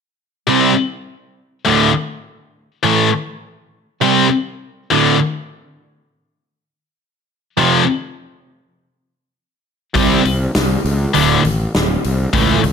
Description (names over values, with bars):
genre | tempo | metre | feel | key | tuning
hard rock | 101 BPM | 4/4 | straight | unclear | A4 = 440 Hz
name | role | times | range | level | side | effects
heavy high-gain guitar | riff | 0.5-12.6 s | D2 to C4 | -15 LUFS | left 7 dB | distortion
overdriven semi-hollow guitar | riff | 0.5-12.6 s | D2 to C4 | -18 LUFS | right 11 dB | phaser
fuzz fingered electric bass | bass | 10.0-12.7 s | D1 to C#2 | -18 LUFS | equal | overdrive
huge arena drum kit | drums | 10.0-12.7 s | hi-hat, kick drum, snare drum | -20 LUFS | equal | none
room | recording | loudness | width
moderate large studio reverb, RT60 1.3 s, studio reverb | none | -13 LUFS | side -6 dB against mid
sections
0.5-12.7 A section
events
none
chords
0.5 C5; 1.7 D5; 2.8 A5; 4.0 C5; 4.9 D5; 7.6 F5; 10.0 C5; 11.2 D5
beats
| 0.47 1.06 1.65 2.24 | 2.84 3.43 4.02 4.62 | 5.21 5.80 6.40 6.99 | 7.59 8.18 8.78 9.37 | 9.96 10.56 11.15 11.75 | 12.35